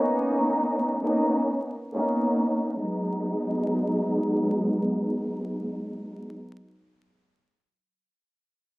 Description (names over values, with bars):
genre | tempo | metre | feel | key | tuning
hip hop | 85 BPM | 4/4 | swing 56% on 16ths | G# minor | A4 = 440 Hz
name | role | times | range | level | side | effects
dark studio string section | accompaniment | 0.0-6.4 s | F#3 to D#4 | -24 LUFS | equal | high-pass filter, low-pass filter
room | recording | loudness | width
moderate small room reverb, RT60 0.6 s | rough home demo mix, vinyl crackle | -24 LUFS | side -21 dB against mid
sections
0.0-2.8 A section; 2.8-5.6 B section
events
filter sweep on string section 0.0-2.8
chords
0.0 Bmaj9; 2.8 G#m7